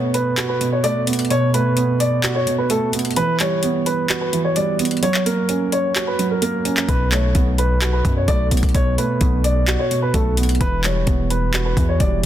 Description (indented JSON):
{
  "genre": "hip hop, trap",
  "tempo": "129 BPM",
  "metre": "4/4",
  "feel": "half-time",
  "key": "B minor",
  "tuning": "A4 = 440 Hz",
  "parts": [
    { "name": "dark grand piano", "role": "melody", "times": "0.0-12.2 s", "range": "A4 to D5", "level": "-22 LUFS", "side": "left 1 dB", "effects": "tape echo" },
    { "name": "felt-muted upright piano", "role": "accompaniment", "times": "0.0-12.3 s", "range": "B2 to F#4", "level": "-21 LUFS", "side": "right 3 dB", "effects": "none" },
    { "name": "trap drum kit", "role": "drums", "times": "0.1-12.3 s", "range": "handclaps, hi-hat, kick drum", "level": "-22 LUFS", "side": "equal", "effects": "soft clipping on snare" },
    { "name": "distorted 808-style bass", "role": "bass", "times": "6.9-12.3 s", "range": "E1 to F#2", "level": "-20 LUFS", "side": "equal", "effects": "distortion" }
  ],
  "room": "light reverb, small room ambience",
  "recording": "dense, heavily limited modern master",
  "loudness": "-16 LUFS",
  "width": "side -11 dB against mid",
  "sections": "0.0-12.3 A section",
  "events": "break 0.0-6.9; kick muted 6.0-6.9",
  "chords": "0.0 B5; 3.2 Emadd9; 5.0 F#; 6.9 B5; 10.6 Emadd9"
}